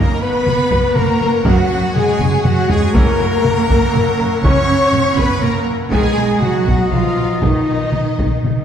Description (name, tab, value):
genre	cinematic, epic orchestral film score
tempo	121 BPM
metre	3/4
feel	straight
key	unclear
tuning	A4 = 440 Hz
part	warm symphonic violin section	melody	0.0-8.6 s	D#5 to C#6	-29 LUFS	left 3 dB	none
part	dark studio violin section	second line	0.0-8.6 s	D#5 to C#6	-28 LUFS	left 2 dB	none
part	mellow hollow silver concert flute	second line	0.0-8.6 s	D#5 to C#6	-27 LUFS	left 2 dB	none
part	rich symphonic viola section	accompaniment	0.0-8.6 s	D#4 to C#5	-25 LUFS	equal	none
part	clear trombone section	sustained chords	0.0-7.6 s	C#3 to C#4	-31 LUFS	right 2 dB	none
part	mellow French horn section	sustained chords	0.0-8.6 s	D#4 to C#5	-20 LUFS	left 4 dB	none
part	mellow woodwind section	sustained chords	0.0-8.6 s	B3 to F#5	-28 LUFS	left 1 dB	none
part	bright trumpet section	stabs	0.0-8.6 s	D#4 to C#5	-24 LUFS	equal	none
part	dark symphonic double bass section	bass	0.0-8.5 s	F#1 to B1	-21 LUFS	right 2 dB	none
part	rich symphonic cello section	bass	0.0-8.6 s	D#3 to C#4	-20 LUFS	right 2 dB	none
part	taiko ensemble	drums	0.5-8.6 s	none	-18 LUFS	equal	none
room	wet scoring stage reverb, RT60 2.0 s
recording	heard from further back in the room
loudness	-13 LUFS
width	side -8 dB against mid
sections	0.0-8.6 A section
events	drum fill 2.2-2.9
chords	0.0 F#; 2.9 F#7; 5.9 B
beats	0.47 0.96 | 1.46 1.96 2.45 | 2.95 3.44 3.94 | 4.43 4.92 5.42 | 5.91 6.41 6.91 | 7.42 7.93 8.44